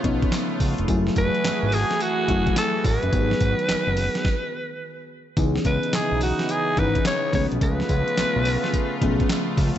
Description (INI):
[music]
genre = R&B, new jack swing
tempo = 107 BPM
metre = 4/4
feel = swing 66% on 16ths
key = C# minor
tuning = A4 = 441 Hz
[part]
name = raspy alto saxophone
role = melody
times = 0.0-9.3 s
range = F#4 to C#5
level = -25 LUFS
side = equal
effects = none
[part]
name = FM electric piano with soft pad layer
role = accompaniment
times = 0.0-9.8 s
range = D#3 to A4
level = -27 LUFS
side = left 3 dB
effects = chorus
[part]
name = sweeping resonant pad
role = sustained chords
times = 0.0-9.8 s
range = C#3 to G#4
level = -30 LUFS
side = right 2 dB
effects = chorus
[part]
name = fat analog bass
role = bass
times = 0.0-9.7 s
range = E#1 to C#2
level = -25 LUFS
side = equal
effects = none
[part]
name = boom bap sampler-style drum kit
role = drums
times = 0.0-9.8 s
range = handclaps, hi-hat, kick drum, snare drum, tambourine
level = -26 LUFS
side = equal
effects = gated reverb
[sound]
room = little or no reverb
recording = nothing above 7.9 kHz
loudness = -20 LUFS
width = side -11 dB against mid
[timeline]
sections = 0.0-5.4 A section; 5.4-9.8 A section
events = stop 4.2-5.4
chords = 0.0 C#7b13; 0.9 F#m9; 3.1 G#m7; 5.4 C#m9; 7.3 C#7b13